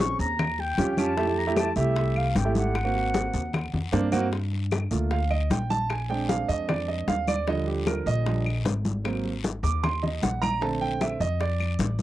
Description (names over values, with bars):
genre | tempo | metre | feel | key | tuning
Afro-Cuban jazz | 153 BPM | 4/4 | straight | G minor | A4 = 440 Hz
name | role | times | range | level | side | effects
mellow concert flute | melody | 0.0-3.9 s | E5 to Db6 | -30 LUFS | left 1 dB | none
warm grand piano | accompaniment | 0.0-12.0 s | D3 to D6 | -28 LUFS | right 4 dB | none
upright bass | bass | 0.0-12.0 s | Ab1 to G2 | -28 LUFS | left 1 dB | none
bongos | percussion | 0.0-12.0 s | none | -33 LUFS | left 6 dB | none
congas | percussion | 0.0-12.0 s | none | -30 LUFS | left 2 dB | none
guiro | percussion | 0.0-12.0 s | none | -42 LUFS | left 8 dB | none
claves | percussion | 0.4-11.8 s | none | -38 LUFS | left 5 dB | none
room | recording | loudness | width
light reverb | dry, close 1970s-style studio recording | -24 LUFS | side -14 dB against mid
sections
0.0-4.3 A section; 4.3-12.0 B section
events
grand piano solo 4.3-12.0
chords
0.4 Eb9; 1.2 Fmaj7; 2.8 Ab9; 4.3 Gm7; 5.9 Bb7; 7.5 Ebmaj7; 9.0 Ab9; 10.6 Bbmaj7